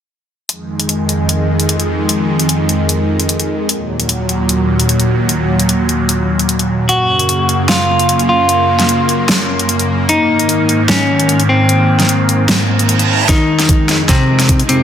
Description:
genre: heavy wobble dubstep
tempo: 150 BPM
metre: 4/4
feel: half-time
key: F phrygian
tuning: A4 = 442 Hz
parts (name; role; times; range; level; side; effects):
- supersaw pad; sustained chords; 0.5-14.8 s; Eb2 to Bb3; -14 LUFS; equal; phaser, vintage 12-bit sampler grit, sidechain pumping
- dubstep drum kit; drums; 0.5-14.8 s; hi-hat, snare drum; -16 LUFS; left 1 dB; overdrive, high-pass filter on hats, small room ambience, high-pass filter on snare
- clean electric guitar; melody; 6.9-14.8 s; C3 to Gb4; -14 LUFS; left 1 dB; tape echo
- reverse cymbal and riser; sound effects; 12.7-14.8 s; none; -19 LUFS; right 5 dB; none
- electronic kick drum; drums; 13.3-14.6 s; none; -13 LUFS; equal; overdrive, small room ambience
room: moderate plate reverb, RT60 1.9 s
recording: dense, heavily limited modern master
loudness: -11 LUFS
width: side -9 dB against mid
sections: 0.5-13.3 A section; 13.3-14.8 B section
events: reverse cymbal 12.7-13.3; build-up 13.3-14.8; drum fill 13.3-14.8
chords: 0.5 Fm7; 3.7 Ebm; 6.9 Gb; 10.1 Absus2; 13.3 Fm7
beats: | 0.49 0.89 1.29 1.69 | 2.09 2.49 2.89 3.29 | 3.69 4.09 4.49 4.89 | 5.29 5.69 6.09 6.49 | 6.89 7.29 7.69 8.09 | 8.49 8.89 9.29 9.69 | 10.09 10.49 10.89 11.29 | 11.69 12.09 12.49 12.89 | 13.29 13.69 14.09 14.49

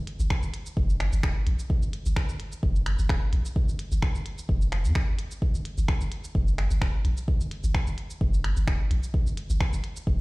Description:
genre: minimal techno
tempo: 129 BPM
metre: 4/4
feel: swing 54% on 16ths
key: G minor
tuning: A4 = 441 Hz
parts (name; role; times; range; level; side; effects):
- punchy sub bass; bass; 0.0-10.2 s; D1 to G2; -26 LUFS; equal; sidechain pumping
- minimal click drum kit; drums; 0.1-10.1 s; cabasa, finger snaps, hi-hat; -35 LUFS; equal; none
- electronic kick drum; drums; 0.3-10.2 s; none; -26 LUFS; equal; none
room: little or no reverb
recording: played on a big sound system in a bare room, stone room reverb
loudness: -24 LUFS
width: side -24 dB against mid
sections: 0.0-10.2 A section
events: none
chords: none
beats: 0.30 0.77 1.23 | 1.70 2.16 2.63 3.09 | 3.56 4.02 4.49 4.95 | 5.42 5.88 6.35 6.82 | 7.28 7.75 8.21 8.68 | 9.14 9.61 10.07

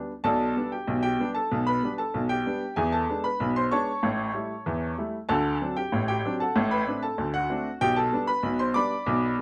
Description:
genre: ragtime piano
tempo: 95 BPM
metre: 2/4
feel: straight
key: G major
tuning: A4 = 440 Hz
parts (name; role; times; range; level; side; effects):
- clear upright piano; solo; 0.0-9.4 s; A1 to D6; -27 LUFS; equal; none
room: light reverb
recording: close, detailed microphones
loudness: -27 LUFS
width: mono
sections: 0.2-9.4 A section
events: none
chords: 0.2 G/B; 2.8 E7; 4.0 A7; 5.3 D7; 6.5 D7/A; 7.8 G/B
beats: | 0.24 0.87 | 1.50 2.14 | 2.77 3.40 | 4.03 4.66 | 5.29 5.92 | 6.55 7.18 | 7.81 8.44 | 9.07

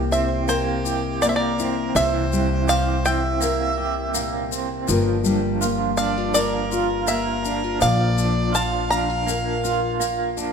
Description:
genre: acoustic folk duo or small band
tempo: 82 BPM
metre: 4/4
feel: straight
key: C mixolydian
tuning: A4 = 442 Hz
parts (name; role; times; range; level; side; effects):
- nylon-string guitar; accompaniment; 0.0-10.5 s; G2 to Bb4; -25 LUFS; left 3 dB; none
- electric guitar through a small old amp; arpeggios; 0.0-10.5 s; E3 to G4; -26 LUFS; right 4 dB; tremolo
- upright bass; bass; 0.0-10.5 s; G1 to C2; -27 LUFS; equal; none
- bluegrass banjo; melody; 0.1-10.3 s; C5 to Bb5; -24 LUFS; right 1 dB; none
- warm harmonica; second line; 0.1-10.3 s; G4 to F5; -28 LUFS; right 2 dB; none
- tube shaker; percussion; 0.1-10.5 s; none; -31 LUFS; left 10 dB; none
room: moderate concert hall reverb, RT60 1.9 s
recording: minimal, uncompressed stereo recording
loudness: -19 LUFS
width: side -6 dB against mid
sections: 0.0-10.5 A section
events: none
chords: 0.0 C7; 4.9 Gm7; 7.8 Bb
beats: 0.49 1.22 | 1.95 2.69 3.42 4.15 | 4.88 5.62 6.35 7.08 | 7.81 8.54 9.28 10.01

